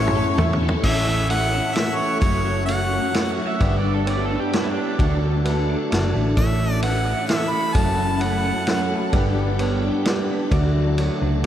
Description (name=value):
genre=folk rock and heartland rock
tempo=130 BPM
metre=3/4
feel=straight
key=A mixolydian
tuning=A4 = 440 Hz
part: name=clear harmonica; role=melody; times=0.0-3.3, 6.4-8.9 s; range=C#5 to B5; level=-26 LUFS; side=equal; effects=diffuse ambient delay
part: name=overdriven reed electric piano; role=accompaniment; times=0.0-11.5 s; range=E4 to E5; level=-31 LUFS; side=right 4 dB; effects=none
part: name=picked steel-string acoustic guitar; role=accompaniment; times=0.0-11.5 s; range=F#2 to A4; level=-28 LUFS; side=left 5 dB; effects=ensemble chorus
part: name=tonewheel organ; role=sustained chords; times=0.0-11.5 s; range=A3 to D5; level=-30 LUFS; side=left 1 dB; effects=chorus vibrato, slow rotary speaker
part: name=clean electric guitar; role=riff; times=0.0-11.5 s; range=F#2 to A4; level=-27 LUFS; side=right 4 dB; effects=lush chorus
part: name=hollow-body short-scale picked electric bass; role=bass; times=0.0-11.4 s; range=F#1 to E2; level=-22 LUFS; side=equal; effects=none
part: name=vintage drum kit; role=drums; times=0.1-11.5 s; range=crash cymbal, kick drum, ride cymbal, snare drum, toms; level=-25 LUFS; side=equal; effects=none
part: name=overdriven slide guitar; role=second line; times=3.5-5.1 s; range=D4 to E5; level=-32 LUFS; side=right 3 dB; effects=wide subtle chorus
room=moderate huge ambient reverb, RT60 7.6 s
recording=dreamy mix soaked in reverb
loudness=-18 LUFS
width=side -10 dB against mid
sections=0.8-11.5 A section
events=drum fill 0.0-0.8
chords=0.0 A; 2.2 F#m; 3.6 G; 5.0 D; 6.4 A; 7.8 F#m; 9.1 G; 10.5 D